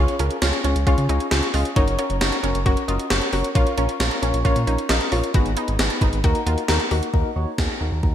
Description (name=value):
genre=synth-pop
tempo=134 BPM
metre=4/4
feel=straight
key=Eb minor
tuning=A4 = 440 Hz
part: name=soft electric-piano-like synth keys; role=accompaniment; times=0.0-8.1 s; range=Bb3 to Eb5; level=-24 LUFS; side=left 2 dB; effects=chorus, tremolo
part: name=analog pluck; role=arpeggios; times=0.0-7.1 s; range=Db4 to Gb4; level=-29 LUFS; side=right 2 dB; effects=chorus, ping-pong delay
part: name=round analog bass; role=bass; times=0.0-8.1 s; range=Gb1 to Db3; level=-23 LUFS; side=equal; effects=none
part: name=gated 80s digital drum machine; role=drums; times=0.1-8.1 s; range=hi-hat, kick drum, snare drum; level=-22 LUFS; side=equal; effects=gated reverb, gated reverb snare
room=moderate lush hall reverb, RT60 2.0 s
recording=bright 1980s-style digital production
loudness=-18 LUFS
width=side -10 dB against mid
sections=0.0-7.1 A section; 7.1-8.1 B section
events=none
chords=0.0 Db; 1.8 Gb; 3.6 Bbm; 5.3 Abm7; 6.2 Ebm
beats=0.42 0.87 1.31 | 1.76 2.21 2.66 3.11 | 3.55 4.00 4.45 4.90 | 5.34 5.79 6.24 6.69 | 7.13 7.58 8.03